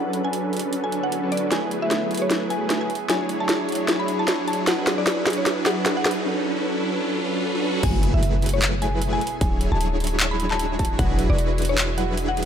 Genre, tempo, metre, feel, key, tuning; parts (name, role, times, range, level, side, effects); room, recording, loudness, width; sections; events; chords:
future bass; 152 BPM; 4/4; swing 56% on 16ths, half-time; F# minor; A4 = 440 Hz
mallet-like synth pluck; melody; 0.0-12.5 s; C#5 to B5; -28 LUFS; left 1 dB; chorus, sidechain pumping, digital delay
shimmering ambient pad; sustained chords; 0.0-12.5 s; B2 to D5; -33 LUFS; right 1 dB; chorus, built-in reverb, sidechain pumping
supersaw chords; riff; 0.0-12.5 s; F#3 to C#5; -25 LUFS; right 1 dB; vintage 12-bit sampler grit, sidechain pumping, low-pass filter
trap drum kit; drums; 0.1-12.5 s; crash cymbal, handclaps, hi-hat, snare drum; -25 LUFS; equal
riser and impact; sound effects; 4.9-9.4 s; -31 LUFS; equal
warm 808-style bass; bass; 7.8-12.5 s; D1 to F#1; -24 LUFS; equal; sidechain pumping
electronic kick drum; drums; 7.8-11.1 s; -23 LUFS; equal
moderate lush hall reverb, RT60 1.9 s; -20 LUFS; side -8 dB against mid
0.0-7.8 A section; 7.8-12.5 B section
build-up 0.0-7.8; filter sweep on supersaw synth 0.0-7.8; filter sweep on ambient pad 0.0-7.8; drum fill 1.5-6.3; riser 4.9-7.8; break 6.3-7.8; drop 7.8-12.5; impact 7.8-9.4
0.0 Bm9/D; 1.5 F#m11; 2.9 Dmaj9#11; 4.7 E9; 6.3 Bm9; 7.8 F#m11; 9.2 Dmaj9#11; 11.0 E9